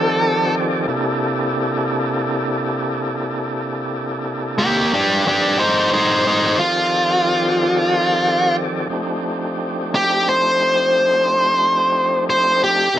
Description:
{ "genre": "blues", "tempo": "60 BPM (dotted quarters)", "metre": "12/8", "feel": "straight", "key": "unclear", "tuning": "A4 = 440 Hz", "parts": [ { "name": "smooth overdriven lead guitar", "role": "melody", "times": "0.0-12.9 s", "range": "Bb3 to C5", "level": "-15 LUFS", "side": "equal", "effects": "none" }, { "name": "tonewheel organ", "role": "sustained chords", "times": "0.0-13.0 s", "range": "C3 to D5", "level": "-21 LUFS", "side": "equal", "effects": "slow rotary speaker, overdrive" } ], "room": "moderate studio reverb, RT60 0.6 s", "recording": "none", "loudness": "-16 LUFS", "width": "side -11 dB against mid", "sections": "0.0-13.0 A section", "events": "lead electric guitar solo 0.0-13.0", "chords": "0.0 F13; 0.9 C13; 4.9 F13", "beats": "| 0.90 1.90 2.90 3.91 | 4.91 5.92 6.92 7.92 | 8.93 9.93 10.93 11.94 | 12.94" }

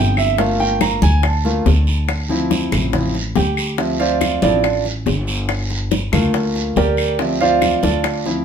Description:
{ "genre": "Afro-Cuban jazz", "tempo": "141 BPM", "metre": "4/4", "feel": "straight", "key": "D minor", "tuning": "A4 = 440 Hz", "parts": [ { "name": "clear concert grand piano", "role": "accompaniment", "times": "0.0-8.4 s", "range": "F3 to Bb5", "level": "-18 LUFS", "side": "right 2 dB", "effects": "none" }, { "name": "upright bass", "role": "bass", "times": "0.0-8.4 s", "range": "G1 to D2", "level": "-20 LUFS", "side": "equal", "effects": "none" }, { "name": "claves", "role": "percussion", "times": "0.2-8.3 s", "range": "none", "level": "-27 LUFS", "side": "left 4 dB", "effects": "none" }, { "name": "congas", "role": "percussion", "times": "0.2-8.4 s", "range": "none", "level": "-24 LUFS", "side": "left 1 dB", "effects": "none" }, { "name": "guiro", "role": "percussion", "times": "0.2-8.4 s", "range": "none", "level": "-28 LUFS", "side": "right 4 dB", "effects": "none" }, { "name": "bongos", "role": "percussion", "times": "0.4-8.4 s", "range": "none", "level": "-24 LUFS", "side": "left 6 dB", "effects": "none" } ], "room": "moderate studio reverb, RT60 0.6 s", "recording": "band playing live in one room", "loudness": "-15 LUFS", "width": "side -7 dB against mid", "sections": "0.0-8.4 A section", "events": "grand piano solo 0.0-8.4", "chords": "0.4 Gm7; 2.1 Dm7; 5.5 Gm7; 7.2 Dm7", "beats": "| 0.39 0.81 1.24 1.66 | 2.09 2.51 2.94 3.36 | 3.79 4.21 4.64 5.06 | 5.49 5.91 6.34 6.76 | 7.19 7.62 8.04" }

